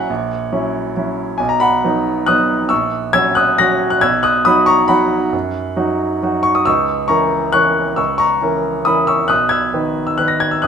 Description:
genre	classical, piano waltz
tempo	136 BPM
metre	3/4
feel	uneven beats, rubato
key	B major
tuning	A4 = 440 Hz
part	clear grand piano	solo	0.0-10.7 s	A#1 to A#6	-13 LUFS	equal	none
room	moderate large studio reverb, RT60 1.2 s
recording	minimal, uncompressed stereo recording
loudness	-13 LUFS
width	side -7 dB against mid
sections	0.0-10.7 A section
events	none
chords	0.0 F#7/A#; 1.4 B; 2.7 F#7/A#; 4.0 B; 6.7 A#dim/C#; 9.3 B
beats	| 0.09 0.52 0.96 | 1.39 1.83 2.28 | 2.71 3.14 3.59 | 4.03 4.46 4.90 | 5.33 5.77 6.23 | 6.67 7.10 7.55 | 7.99 8.42 8.87 | 9.30 9.73 10.19 | 10.64

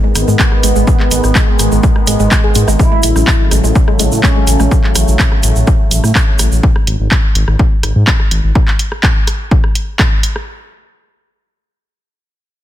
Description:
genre	melodic techno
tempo	125 BPM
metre	4/4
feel	straight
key	unclear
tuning	A4 = 441 Hz
part	sweeping resonant pad	sustained chords	0.0-6.6 s	C#3 to B3	-20 LUFS	equal	lush chorus, sidechain pumping
part	woody wave-folded pluck	arpeggios	0.0-4.7 s	G#3 to G#4	-20 LUFS	right 1 dB	analog chorus, sidechain pumping, dub echo
part	dark detuned saw bass	bass	0.2-8.5 s	G#1 to A2	-13 LUFS	equal	sidechain pumping
part	punchy analog drum machine	drums	0.2-10.5 s	handclaps, hi-hat, rim click	-18 LUFS	equal	small room ambience
part	tube shaker	percussion	0.2-6.6 s	none	-21 LUFS	right 3 dB	none
part	expressive portamento lead	melody	0.4-4.7 s	G#3 to E4	-19 LUFS	right 1 dB	analog chorus, sidechain pumping, ping-pong delay
part	electronic kick drum	drums	0.4-10.1 s	none	-12 LUFS	equal	small room ambience
room	digital ambience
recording	dense, heavily limited modern master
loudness	-9 LUFS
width	side -13 dB against mid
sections	0.0-10.5 A section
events	drop 0.0-10.5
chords	0.0 G#m; 2.8 A6; 6.6 N.C.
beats	0.39 | 0.87 1.35 1.83 2.31 | 2.79 3.27 3.75 4.23 | 4.71 5.19 5.67 6.15 | 6.63 7.11 7.59 8.07 | 8.55 9.03 9.51 9.99

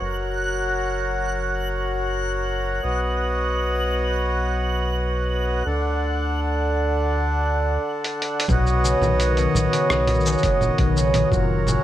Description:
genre	folktronica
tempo	85 BPM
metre	4/4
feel	straight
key	unclear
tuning	A4 = 440 Hz
part	hand-pumped harmonium	sustained chords	0.0-11.8 s	D3 to F#5	-24 LUFS	equal	none
part	round analog bass	bass	0.0-11.8 s	F#1 to D2	-24 LUFS	equal	none
part	backwards swelling texture	texture	0.0-7.8 s	F#6	-32 LUFS	equal	built-in reverb
part	lo-fi sampler-style drum kit	drums	8.0-11.8 s	congas, hi-hat, rim click, shaker	-25 LUFS	right 1 dB	low-pass filter on hats, low-pass filter on perc, low-pass filter on snare
part	concert harp	arpeggios	8.5-11.8 s	A#2 to D#3	-22 LUFS	left 1 dB	digital delay
part	electronic kick drum	drums	8.5-11.5 s	none	-23 LUFS	equal	none
room	light reverb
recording	none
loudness	-20 LUFS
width	side -12 dB against mid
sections	0.0-8.5 A section; 8.5-11.8 B section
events	break 7.8-8.5; drum fill 8.1-8.5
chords	0.0 F#; 2.8 Badd9; 5.7 D; 8.5 Badd9; 11.3 F#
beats	| 0.01 0.72 1.43 2.13 | 2.84 3.54 4.25 4.96 | 5.66 6.37 7.07 7.78 | 8.48 9.19 9.90 10.60 | 11.31

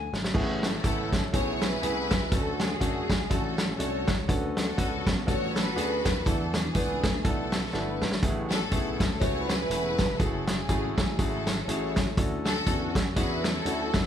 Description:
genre	uptempo gospel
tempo	122 BPM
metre	4/4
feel	swing 58% on 8ths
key	A major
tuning	A4 = 439 Hz
part	clear grand piano	accompaniment	0.0-14.0 s	A2 to G#5	-32 LUFS	equal	none
part	slap bass with an envelope filter	bass	0.0-14.1 s	E1 to F#2	-34 LUFS	equal	none
part	warm soul drum kit	drums	0.1-14.0 s	crash cymbal, hi-hat, kick drum, snare drum	-27 LUFS	equal	none
part	warm studio string section	melody	0.6-14.1 s	B3 to C#5	-32 LUFS	left 1 dB	none
room	moderate large studio reverb, RT60 1.1 s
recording	band playing live in one room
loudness	-25 LUFS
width	side -9 dB against mid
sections	0.3-14.1 A section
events	drum fill 0.0-0.3, 7.7-8.2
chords	0.3 Amaj9; 2.3 Dmaj7; 4.3 Bm9; 6.3 E7sus4; 8.2 Amaj9; 10.2 F#m9; 12.2 Dmaj9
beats	| 0.35 0.84 1.33 1.82 | 2.32 2.81 3.30 3.79 | 4.29 4.78 5.27 5.76 | 6.26 6.75 7.24 7.74 | 8.23 8.72 9.21 9.71 | 10.20 10.70 11.19 11.68 | 12.18 12.67 13.16 13.65

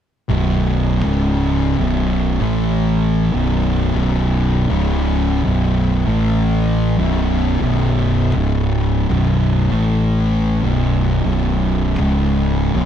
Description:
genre	metal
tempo	66 BPM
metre	4/4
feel	swing 65% on 8ths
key	unclear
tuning	A4 = 440 Hz
part	thick fuzz guitar	riff	0.3-12.9 s	B1 to A3	-19 LUFS	left 7 dB	distortion
part	thick fuzz guitar	riff	0.3-12.9 s	B1 to A3	-20 LUFS	right 8 dB	distortion
part	fuzz fingered electric bass	bass	0.3-12.9 s	B0 to A1	-19 LUFS	equal	overdrive
room	moderate studio reverb, RT60 0.7 s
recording	dark, warm production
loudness	-15 LUFS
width	side -9 dB against mid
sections	0.3-12.9 A section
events	none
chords	0.3 B5; 2.4 A5; 3.3 B5; 6.0 A5; 6.9 B5; 9.7 A5; 10.6 B5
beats	| 0.30 1.21 2.12 3.04 | 3.95 4.86 5.77 6.69 | 7.60 8.51 9.42 10.34 | 11.24 12.15

